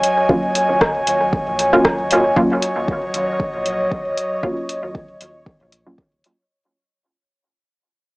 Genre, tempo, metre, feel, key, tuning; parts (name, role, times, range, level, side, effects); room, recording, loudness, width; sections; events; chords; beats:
dub techno; 116 BPM; 4/4; swing 55% on 16ths; Eb minor; A4 = 440 Hz
airy breathy pad; sustained chords; 0.0-6.5 s; Gb3 to Ab5; -19 LUFS; equal; chorus, sidechain pumping, cassette tape
filtered dub chord stab; stabs; 0.0-6.0 s; Gb3 to F4; -18 LUFS; equal; phaser, cassette tape, sidechain pumping, dub echo
deep house drum kit; drums; 0.0-6.4 s; hi-hat, rim click; -20 LUFS; equal; overdrive, cassette tape, dub echo
bubbling stepped-filter texture; texture; 0.0-6.5 s; Db5 to Eb5; -28 LUFS; equal; chorus, built-in reverb, sidechain pumping, cassette tape
round analog bass; bass; 0.3-6.2 s; Eb1 to Bb1; -38 LUFS; equal; sidechain pumping
electronic kick drum; drums; 0.3-6.1 s; -24 LUFS; equal; overdrive, cassette tape
light reverb; home recording on cassette, small speaker sound; -16 LUFS; side -26 dB against mid
0.0-2.4 A section; 2.4-6.5 B section
fade-out 2.4-6.5; filter sweep on synth stab 2.4-6.5
0.0 Ebm7
| 0.29 0.81 1.33 1.84 | 2.36 2.88 3.40 3.91 | 4.43 4.95 5.47 5.98